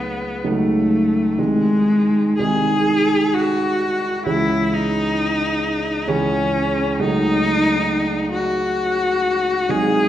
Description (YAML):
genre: classical, romantic duo for cello and grand piano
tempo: 66 BPM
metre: 3/4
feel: rubato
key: unclear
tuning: A4 = 441 Hz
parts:
  - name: rich cello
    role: melody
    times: 0.0-10.1 s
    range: G#3 to G#4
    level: -19 LUFS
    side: left 2 dB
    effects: none
  - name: clear baby grand piano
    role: accompaniment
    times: 0.0-10.1 s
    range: B#1 to D#4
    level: -20 LUFS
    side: right 2 dB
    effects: none
room: wet recital hall reverb, RT60 1.7 s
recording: recorded in a church or concert hall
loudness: -16 LUFS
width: side -12 dB against mid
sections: 0.0-10.1 A section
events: none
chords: 0.0 D#m7b5/C#; 1.4 G#/B#; 4.3 C#m; 7.0 D#m7b5/C#